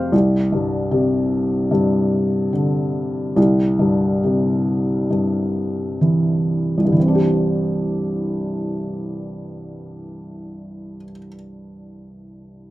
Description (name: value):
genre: pop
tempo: 62-76 BPM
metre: 4/4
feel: straight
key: C major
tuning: A4 = 439 Hz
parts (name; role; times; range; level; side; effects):
- felt-muted upright piano; accompaniment; 0.0-12.7 s; C2 to G5; -18 LUFS; equal; none
room: moderate studio reverb, RT60 0.6 s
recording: rough home demo mix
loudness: -17 LUFS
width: side -16 dB against mid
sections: 0.0-7.0 A section; 7.0-10.8 B section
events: slowing down 0.1-7.0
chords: 0.1 Csus2; 3.4 C; 7.0 Cadd9